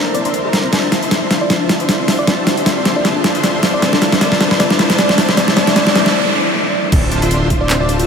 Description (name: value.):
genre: future bass.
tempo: 155 BPM.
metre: 4/4.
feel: swing 55% on 16ths, half-time.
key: D minor.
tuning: A4 = 440 Hz.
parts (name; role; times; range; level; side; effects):
airy breathy pad; sustained chords; 0.0-8.1 s; C3 to C5; -25 LUFS; left 1 dB; none.
big bright polysynth; riff; 0.0-8.1 s; D4 to C6; -19 LUFS; left 2 dB; analog chorus, cassette tape, sidechain pumping, analog delay.
riser, noise sweep and sub drop; sound effects; 0.4-8.1 s; none; -24 LUFS; right 1 dB; none.
soft struck synth lead; melody; 0.1-8.0 s; D5; -21 LUFS; equal; chorus, sidechain pumping, analog delay.
soft round pluck; arpeggios; 0.1-8.0 s; C4 to A4; -25 LUFS; right 1 dB; none.
dubstep drum kit; drums; 0.1-8.1 s; crash cymbal, handclaps, hi-hat, snare drum; -15 LUFS; equal; overdrive.
fat analog bass; bass; 6.9-8.1 s; D1; -18 LUFS; equal; sidechain pumping.
electronic kick drum; drums; 6.9-7.6 s; none; -15 LUFS; equal; overdrive.
room: wet huge ambient reverb, RT60 4.6 s.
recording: dreamy mix soaked in reverb.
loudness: -12 LUFS.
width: side -6 dB against mid.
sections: 0.0-6.9 A section; 6.9-8.1 B section.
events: build-up 0.0-6.9; drum fill 0.0-6.1; filter sweep on analog polysynth 0.0-6.9; riser 0.4-6.1; noise sweep 5.4-6.9; break 6.1-6.9; drop 6.9-8.1; impact 6.9-8.1.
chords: 0.0 C13; 0.7 Dm9; 2.3 Gm11; 5.4 C13; 6.9 Dm9.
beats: 0.34 | 0.73 1.11 1.50 1.89 | 2.28 2.66 3.05 3.44 | 3.83 4.21 4.60 4.99 | 5.37 5.76 6.15 6.54 | 6.92 7.31 7.70.